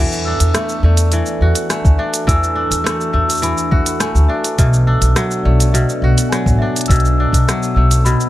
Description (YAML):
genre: folktronica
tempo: 104 BPM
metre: 4/4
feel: straight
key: unclear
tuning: A4 = 444 Hz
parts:
  - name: large celesta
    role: second line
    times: 0.0-8.3 s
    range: D5 to E6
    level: -21 LUFS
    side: left 3 dB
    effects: digital delay
  - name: warbly tape-like pad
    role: sustained chords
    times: 0.0-8.3 s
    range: B2 to A4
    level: -24 LUFS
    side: right 1 dB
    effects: chorus, built-in reverb, phaser
  - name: kora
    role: arpeggios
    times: 0.0-8.3 s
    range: B2 to F#4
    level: -21 LUFS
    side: equal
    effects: digital delay
  - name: upright bass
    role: bass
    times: 0.0-8.1 s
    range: A1 to E2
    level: -14 LUFS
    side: equal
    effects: none
  - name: organic electronic drum kit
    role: drums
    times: 0.1-8.3 s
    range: hi-hat, rim click, shaker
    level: -21 LUFS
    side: equal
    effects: small room ambience
  - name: electronic kick drum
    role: drums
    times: 1.8-7.4 s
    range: none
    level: -14 LUFS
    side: equal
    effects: small room ambience
room: light reverb, small room ambience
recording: none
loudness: -12 LUFS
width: side -15 dB against mid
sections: 0.0-8.3 A section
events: none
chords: 0.0 E9sus4; 4.6 Bm7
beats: 0.55 1.13 1.71 | 2.28 2.86 3.44 4.01 | 4.59 5.17 5.74 6.32 | 6.90 7.47 8.05